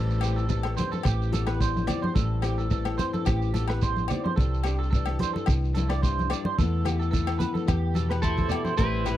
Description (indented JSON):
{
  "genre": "highlife guitar band",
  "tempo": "109 BPM",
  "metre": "4/4",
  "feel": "swing 53% on 16ths",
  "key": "A minor",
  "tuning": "A4 = 440 Hz",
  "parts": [
    { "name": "nylon-string guitar", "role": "accompaniment", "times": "0.0-9.2 s", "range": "E2 to G4", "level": "-32 LUFS", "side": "left 7 dB", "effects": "none" },
    { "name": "electric guitar at the edge of break-up", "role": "arpeggios", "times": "0.0-9.2 s", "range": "G4 to D5", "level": "-33 LUFS", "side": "right 7 dB", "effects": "analog chorus, slapback echo" },
    { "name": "hollow-body short-scale fingered electric bass", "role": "bass", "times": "0.0-9.2 s", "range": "A1 to E2", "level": "-27 LUFS", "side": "equal", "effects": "none" },
    { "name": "shekere", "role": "percussion", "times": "0.1-9.2 s", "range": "none", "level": "-37 LUFS", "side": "right 6 dB", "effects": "none" },
    { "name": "crunchy breakbeat drum kit", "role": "drums", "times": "0.2-9.2 s", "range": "hi-hat, kick drum, rim click", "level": "-28 LUFS", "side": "equal", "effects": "none" },
    { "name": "agogo bells", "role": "percussion", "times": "0.2-9.2 s", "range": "none", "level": "-37 LUFS", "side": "left 16 dB", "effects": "none" },
    { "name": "congas", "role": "percussion", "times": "0.8-8.8 s", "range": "none", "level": "-31 LUFS", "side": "right 1 dB", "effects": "none" },
    { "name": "electric guitar at the edge of break-up", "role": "melody", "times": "8.2-9.2 s", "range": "E4 to B4", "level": "-29 LUFS", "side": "equal", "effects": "wide subtle chorus" }
  ],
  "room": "little or no reverb",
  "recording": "dry, close 1970s-style studio recording",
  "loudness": "-23 LUFS",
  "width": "side -13 dB against mid",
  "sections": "0.0-8.8 A section",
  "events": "none",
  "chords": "0.0 Am7; 4.4 Cadd9; 6.6 Esus4"
}